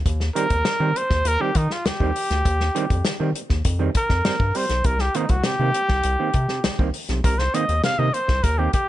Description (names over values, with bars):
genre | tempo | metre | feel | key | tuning
funk | 100 BPM | 4/4 | straight | unclear | A4 = 440 Hz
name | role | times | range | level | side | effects
round analog bass | bass | 0.0-8.7 s | B1 to Eb3 | -23 LUFS | equal | none
warm soul drum kit | drums | 0.1-8.9 s | hi-hat, kick drum, snare drum | -23 LUFS | left 1 dB | none
breathy trumpet | melody | 0.4-8.9 s | Eb4 to F5 | -23 LUFS | equal | none
overdriven clav | stabs | 0.4-8.7 s | C3 to C4 | -28 LUFS | right 6 dB | none
room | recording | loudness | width
studio reverb | nothing above 10.5 kHz | -19 LUFS | side -14 dB against mid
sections
0.0-8.9 A section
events
trumpet solo 0.0-8.9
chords
0.1 Eb6; 4.8 Cm7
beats
| 0.06 0.66 1.26 1.86 | 2.46 3.05 3.65 4.25 | 4.85 5.45 6.05 6.64 | 7.24 7.84 8.44